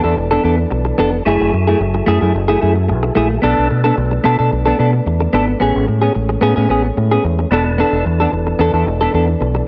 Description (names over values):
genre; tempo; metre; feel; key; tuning
disco; 110 BPM; 4/4; straight; B dorian; A4 = 440 Hz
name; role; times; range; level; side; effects
semi-hollow electric guitar; accompaniment; 0.0-9.6 s; A3 to A4; -18 LUFS; equal; analog chorus, cassette tape
percussive tonewheel organ; sustained chords; 0.0-9.7 s; E3 to A4; -25 LUFS; equal; overdrive, chorus vibrato, fast rotary speaker, cassette tape
deep dub fingered electric bass; bass; 0.0-9.6 s; E1 to B2; -19 LUFS; equal; none
room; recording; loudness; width
light reverb; home recording on cassette; -15 LUFS; mono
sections
0.0-9.7 A section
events
none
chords
0.0 E7sus4; 1.3 F#m9; 3.4 Bm7; 5.6 Amaj9; 7.5 E7sus4